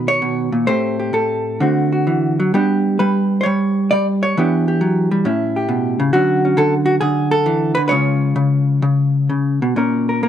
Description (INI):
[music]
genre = solo jazz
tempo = 132 BPM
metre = 4/4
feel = swing 68% on 8ths, rubato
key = unclear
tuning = A4 = 443 Hz
[part]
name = vintage hollow-body jazz guitar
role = solo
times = 0.0-10.3 s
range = A2 to D5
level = -14 LUFS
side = equal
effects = none
[sound]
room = little or no reverb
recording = close, detailed microphones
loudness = -14 LUFS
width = side -9 dB against mid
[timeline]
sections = 0.0-9.8 A section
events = none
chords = 0.0 Bmaj7; 0.7 Am7; 1.6 D7; 2.5 G; 4.4 Em7; 5.3 A7; 6.1 Dmaj7; 7.9 C#; 9.8 Bbm